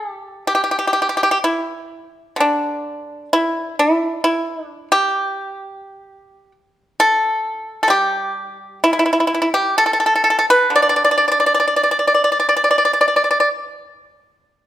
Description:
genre	chinese traditional, Chinese solo plucked strings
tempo	56-67 BPM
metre	4/4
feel	rubato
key	D zhi mode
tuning	A4 = 440 Hz
part	pipa	solo	0.0-13.7 s	D3 to D5	-15 LUFS	equal	none
room	moderate recital hall reverb, RT60 1.5 s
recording	none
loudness	-14 LUFS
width	side -12 dB against mid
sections	0.0-14.7 A section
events	none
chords	none

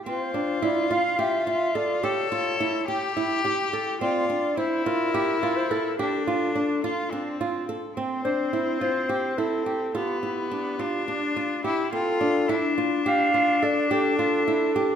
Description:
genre	contemporary instrumental, chamber music in an uneven meter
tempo	212 BPM (eighths)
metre	7/8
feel	straight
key	D minor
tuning	A4 = 440 Hz
part	dark clarinet	melody	0.1-15.0 s	G4 to F5	-27 LUFS	equal	none
part	bright cello	second line	0.1-15.0 s	B3 to A4	-27 LUFS	left 5 dB	none
part	flamenco guitar	arpeggios	0.1-15.0 s	C4 to A4	-27 LUFS	right 4 dB	none
room	wet concert hall reverb, RT60 2.1 s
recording	none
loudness	-22 LUFS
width	side -8 dB against mid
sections	0.0-8.0 A section; 8.0-15.0 B section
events	none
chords	0.1 Dm7; 2.0 A7; 4.0 Bbmaj7; 6.0 Dm7; 8.0 Cadd9; 10.0 G7; 11.9 Dmadd9

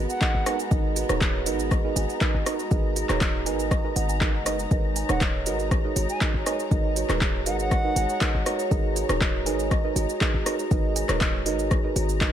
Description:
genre	afro house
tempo	120 BPM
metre	4/4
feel	straight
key	G# minor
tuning	A4 = 438 Hz
part	dark studio string section	sustained chords	0.0-12.3 s	G#3 to A#5	-33 LUFS	equal	sidechain pumping
part	kalimba	arpeggios	0.0-12.3 s	D#4 to G#5	-32 LUFS	right 1 dB	sidechain pumping, digital delay
part	warm 808-style bass	bass	0.0-12.3 s	D#1 to G#1	-29 LUFS	left 1 dB	sidechain pumping
part	silver concert flute	melody	0.1-0.6, 5.1-8.3 s	F#5 to G#5	-32 LUFS	right 1 dB	digital delay
part	deep house drum kit	drums	0.1-12.3 s	handclaps, hi-hat, rim click, shaker	-29 LUFS	equal	none
part	deep mellow chord stab	stabs	0.2-12.3 s	D#4 to D#5	-30 LUFS	right 6 dB	chorus, sidechain pumping, digital delay
part	electronic kick drum	drums	0.2-12.3 s	none	-24 LUFS	left 1 dB	overdrive
room	light reverb, small room ambience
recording	faint mains hum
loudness	-22 LUFS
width	side -10 dB against mid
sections	0.0-12.3 A section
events	none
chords	0.0 G#madd9

